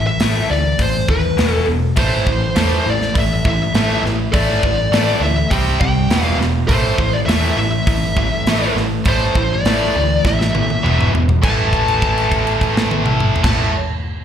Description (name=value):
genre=hard rock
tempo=102 BPM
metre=4/4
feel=straight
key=A minor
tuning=A4 = 438 Hz
part: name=smooth overdriven lead guitar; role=melody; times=0.0-13.7 s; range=B4 to A5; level=-20 LUFS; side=left 1 dB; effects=slapback echo, analog delay
part: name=tight distorted guitar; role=riff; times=0.0-13.7 s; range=E2 to C4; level=-22 LUFS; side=left 11 dB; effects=distortion, slapback echo
part: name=overdriven picked electric bass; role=bass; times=0.0-13.7 s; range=E1 to E2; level=-20 LUFS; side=equal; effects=none
part: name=tight metal drum kit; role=drums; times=0.2-13.6 s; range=crash cymbal, hi-hat, kick drum, snare drum, toms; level=-19 LUFS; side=equal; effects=none
part: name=heavy high-gain guitar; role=riff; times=2.0-13.7 s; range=E2 to C4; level=-22 LUFS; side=right 10 dB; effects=distortion
room=light reverb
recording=live gig heard through the venue's PA, club reverb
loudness=-14 LUFS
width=side -9 dB against mid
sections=0.0-11.4 A section; 11.4-13.8 B section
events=drum fill 10.2-11.4; held note 11.4-13.4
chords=0.0 Am; 1.4 E5; 2.0 Am; 5.5 C5; 6.1 E5; 6.7 A5; 10.8 E5; 11.4 A5